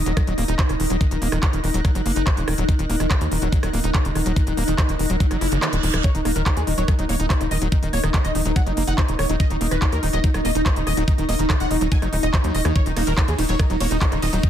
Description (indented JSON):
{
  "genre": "psychedelic trance",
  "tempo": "143 BPM",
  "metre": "4/4",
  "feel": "straight",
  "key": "Eb minor",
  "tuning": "A4 = 440 Hz",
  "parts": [
    { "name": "swarming drone", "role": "sustained chords", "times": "0.0-14.5 s", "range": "Eb4", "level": "-29 LUFS", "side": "right 1 dB", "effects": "built-in reverb, sidechain pumping" },
    { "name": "tight sequencer bass", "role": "bass", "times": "0.0-14.4 s", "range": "Eb1 to Eb2", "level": "-23 LUFS", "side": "equal", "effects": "none" },
    { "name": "granular cloud pad", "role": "texture", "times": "0.0-14.5 s", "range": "Eb4 to Gb6", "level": "-30 LUFS", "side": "left 1 dB", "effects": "built-in reverb, sidechain pumping" },
    { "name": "screaming distorted acid line", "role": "riff", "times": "0.1-14.5 s", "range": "Db3 to Fb4", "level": "-29 LUFS", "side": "equal", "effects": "distortion, chorus, auto-pan, sidechain pumping, ping-pong delay" },
    { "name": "big-room dance drum kit", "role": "drums", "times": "0.1-14.5 s", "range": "handclaps, hi-hat, ride cymbal, rim click", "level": "-28 LUFS", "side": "equal", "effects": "overdrive, small room ambience" },
    { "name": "electronic kick drum", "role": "drums", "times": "0.2-14.5 s", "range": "none", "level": "-19 LUFS", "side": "equal", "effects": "small room ambience" },
    { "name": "reverse cymbal", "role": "sound effects", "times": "5.4-6.0 s", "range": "none", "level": "-30 LUFS", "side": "right 6 dB", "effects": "none" },
    { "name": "wide unison lead", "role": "melody", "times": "6.0-14.5 s", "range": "Eb4 to Ab5", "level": "-27 LUFS", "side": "equal", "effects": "phaser, sidechain pumping, ping-pong delay" }
  ],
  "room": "light reverb",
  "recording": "dense, heavily limited modern master",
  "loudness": "-18 LUFS",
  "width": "side -10 dB against mid",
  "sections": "0.0-14.5 A section",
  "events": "reverse cymbal 5.4-6.0; kick drops out 5.6-6.0",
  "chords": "0.0 Eb5",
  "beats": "0.17 0.59 | 1.01 1.43 1.85 2.27 | 2.69 3.10 3.52 3.94 | 4.36 4.78 5.20 5.62 | 6.04 6.46 6.88 7.30 | 7.72 8.14 8.56 8.98 | 9.40 9.82 10.24 10.66 | 11.08 11.50 11.92 12.34 | 12.76 13.18 13.60 14.02 | 14.43"
}